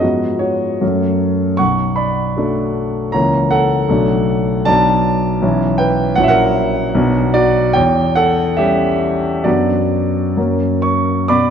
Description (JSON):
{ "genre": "classical, romantic character piece for solo piano", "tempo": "63-81 BPM", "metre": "2/4", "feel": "rubato", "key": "B minor from 4.7 s", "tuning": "A4 = 443 Hz", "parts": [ { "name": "warm concert grand piano", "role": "solo", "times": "0.0-11.5 s", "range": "A#1 to D6", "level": "-13 LUFS", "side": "equal", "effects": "none" } ], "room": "moderate concert hall reverb, RT60 2.0 s", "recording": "dark, warm production", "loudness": "-13 LUFS", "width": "side -8 dB against mid", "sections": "0.0-11.3 A section", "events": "none", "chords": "0.0 Fdim/Ab; 0.8 F#m; 1.6 Bm7; 3.1 A#dim/C#; 3.9 Bm7; 5.4 C#m7b5/B; 6.2 F#7/A#; 6.9 Bm; 7.8 C#dim/E; 9.5 Bm/F#; 10.4 F#" }